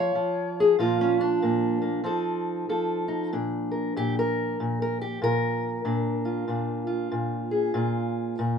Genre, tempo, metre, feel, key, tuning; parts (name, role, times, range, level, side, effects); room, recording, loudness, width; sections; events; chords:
acoustic country blues, solo or duo; 95 BPM; 4/4; swing 61% on 8ths; Bb major; A4 = 440 Hz
fingerpicked steel-string acoustic guitar; solo; 0.0-8.6 s; Bb2 to F5; -24 LUFS; equal
light reverb; minimal, uncompressed stereo recording; -24 LUFS; side -6 dB against mid
0.0-3.3 A section; 3.3-8.6 B section
steel-string acoustic guitar solo 3.3-8.6
0.0 N.C.; 0.8 Bb; 2.1 F7; 3.3 Bb7